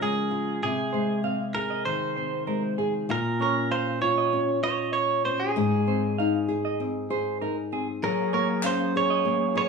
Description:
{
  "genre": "acoustic pop",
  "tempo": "97 BPM",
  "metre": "4/4",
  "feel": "straight",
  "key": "unclear",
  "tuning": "A4 = 440 Hz",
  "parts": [
    { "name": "direct-recorded clean electric guitar", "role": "melody", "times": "0.0-9.7 s", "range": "Ab4 to Eb5", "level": "-27 LUFS", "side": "right 3 dB", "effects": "tape echo" },
    { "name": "nylon-string guitar", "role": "accompaniment", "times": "0.0-9.7 s", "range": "Ab2 to Ab4", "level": "-27 LUFS", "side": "left 2 dB", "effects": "none" },
    { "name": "clean electric guitar", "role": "arpeggios", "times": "0.0-9.7 s", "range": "Ab4 to F5", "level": "-32 LUFS", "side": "right 8 dB", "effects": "none" },
    { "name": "overdriven tonewheel organ", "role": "sustained chords", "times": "8.0-9.7 s", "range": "Gb3 to Ab4", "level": "-35 LUFS", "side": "right 4 dB", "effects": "none" },
    { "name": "group handclap", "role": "percussion", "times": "8.6-8.8 s", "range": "none", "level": "-33 LUFS", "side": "left 3 dB", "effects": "none" }
  ],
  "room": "moderate studio reverb, RT60 0.6 s",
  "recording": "studio reverb",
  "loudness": "-24 LUFS",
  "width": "side -5 dB against mid",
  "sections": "0.0-3.1 A section; 3.1-9.7 B section",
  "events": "none",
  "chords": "0.0 Db; 0.6 Ab/C; 3.1 Bbm; 5.6 Ab; 8.0 Gbadd9"
}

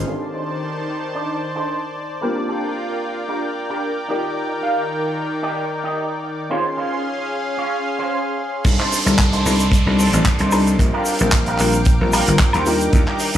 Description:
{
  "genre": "nu-disco, nu disco",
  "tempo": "112 BPM",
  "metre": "4/4",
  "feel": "swing 54% on 16ths",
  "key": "C dorian",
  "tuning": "A4 = 440 Hz",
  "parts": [
    { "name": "dark baby grand piano", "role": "accompaniment", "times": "0.0-13.4 s", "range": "Eb3 to C6", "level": "-25 LUFS", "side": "left 1 dB", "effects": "sidechain pumping, low-pass filter, tape echo" },
    { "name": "lush unison pad", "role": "sustained chords", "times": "0.0-13.4 s", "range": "Eb3 to D6", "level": "-25 LUFS", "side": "equal", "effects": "chorus, vintage 12-bit sampler grit, sidechain pumping" },
    { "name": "dry thumbed slap bass", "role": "bass", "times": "0.0, 8.7-13.4 s", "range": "G1 to Eb2", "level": "-18 LUFS", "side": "left 1 dB", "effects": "none" },
    { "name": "electric guitar with an envelope filter", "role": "riff", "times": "0.1-13.3 s", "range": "Db4 to F5", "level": "-25 LUFS", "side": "right 2 dB", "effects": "ensemble chorus, low-pass filter, tape echo" },
    { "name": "damped 70s drum kit", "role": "drums", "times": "8.6-13.4 s", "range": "crash cymbal, handclaps, hi-hat, shaker, woodblock", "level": "-22 LUFS", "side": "equal", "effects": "none" },
    { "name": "kick drum", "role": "drums", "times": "8.6-13.0 s", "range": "none", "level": "-16 LUFS", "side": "equal", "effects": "none" },
    { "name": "downlifter", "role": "sound effects", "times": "8.7-12.9 s", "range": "none", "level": "-28 LUFS", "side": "right 1 dB", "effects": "none" }
  ],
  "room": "light reverb, studio ambience",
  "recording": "dry, gritty hardware recording, studio reverb",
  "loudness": "-17 LUFS",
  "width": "side -11 dB against mid",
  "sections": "0.1-8.6 A section; 8.6-13.4 B section",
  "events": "filter sweep on clean electric guitar 0.1-8.6; filter sweep on grand piano 0.1-8.6; drop 8.6-13.4",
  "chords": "0.1 Cm69; 2.2 Bb6; 4.1 Ebmaj7; 6.5 Dbmaj7; 8.6 Cm69; 10.8 Bb6; 12.7 Ebmaj7"
}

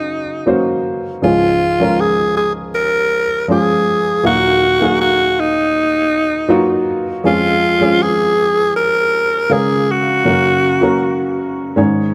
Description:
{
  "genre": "pop",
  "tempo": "80 BPM",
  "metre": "4/4",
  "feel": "straight",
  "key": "Db major",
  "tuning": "A4 = 440 Hz",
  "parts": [
    { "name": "growling alto saxophone", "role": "melody", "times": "0.0-11.4 s", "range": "Eb4 to Bb4", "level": "-17 LUFS", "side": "equal", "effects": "none" },
    { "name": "dark upright piano", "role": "accompaniment", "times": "0.0-12.1 s", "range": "Db2 to F5", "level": "-19 LUFS", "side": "equal", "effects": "none" }
  ],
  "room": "moderate spring reverb, RT60 1.3 s",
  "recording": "none",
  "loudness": "-15 LUFS",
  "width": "mono",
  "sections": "0.0-12.1 A section",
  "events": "none",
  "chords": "0.0 Gb; 1.2 Db; 4.2 Ebmadd9; 7.2 Db/F; 10.3 Gb"
}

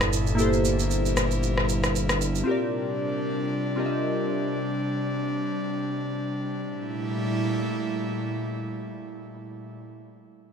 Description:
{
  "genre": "amapiano",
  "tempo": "115 BPM",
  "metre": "4/4",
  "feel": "swing 55% on 16ths",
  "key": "G dorian",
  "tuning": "A4 = 437 Hz",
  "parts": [
    { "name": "glassy digital keys", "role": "accompaniment", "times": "0.0-4.6 s", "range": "Bb3 to E5", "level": "-28 LUFS", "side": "left 1 dB", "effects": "chorus" },
    { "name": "airy breathy pad", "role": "sustained chords", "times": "0.0-9.8 s", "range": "Bb2 to A4", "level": "-28 LUFS", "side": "equal", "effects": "chorus" },
    { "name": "fat analog bass", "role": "bass", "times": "0.0-2.4 s", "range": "G1", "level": "-26 LUFS", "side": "equal", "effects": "none" },
    { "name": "electronic rim click and shaker", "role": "drums", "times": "0.0-2.5 s", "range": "none", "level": "-28 LUFS", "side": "equal", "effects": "none" }
  ],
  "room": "light reverb",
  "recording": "bright 1980s-style digital production",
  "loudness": "-24 LUFS",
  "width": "side -7 dB against mid",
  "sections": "0.0-6.6 A section; 6.6-10.5 B section",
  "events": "none",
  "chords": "0.0 Gm69; 2.5 Bb69; 6.6 Gm69"
}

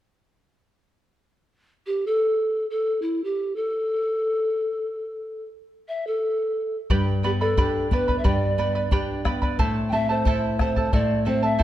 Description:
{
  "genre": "andean folk, Andean ensemble",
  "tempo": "free time",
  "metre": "none",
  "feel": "none",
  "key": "unclear",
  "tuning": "A4 = 440 Hz",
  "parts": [
    { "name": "mellow hollow polished pan flute", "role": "melody", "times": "1.9-11.6 s", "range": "E4 to G5", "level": "-24 LUFS", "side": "equal", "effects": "none" },
    { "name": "charango", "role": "accompaniment", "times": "6.9-11.6 s", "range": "E4 to B5", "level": "-27 LUFS", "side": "right 2 dB", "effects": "none" },
    { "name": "nylon-string guitar", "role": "accompaniment", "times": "6.9-11.6 s", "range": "G2 to E4", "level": "-25 LUFS", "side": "left 1 dB", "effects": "none" },
    { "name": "bombo", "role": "percussion", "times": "6.9-11.6 s", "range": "none", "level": "-25 LUFS", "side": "equal", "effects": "none" }
  ],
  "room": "moderate recital hall reverb, RT60 1.6 s",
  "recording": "dark, warm production",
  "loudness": "-21 LUFS",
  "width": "side -13 dB against mid",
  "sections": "1.5-6.9 A section; 6.9-11.6 B section",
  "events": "none",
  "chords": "1.5 N.C.; 6.9 G; 9.6 Am"
}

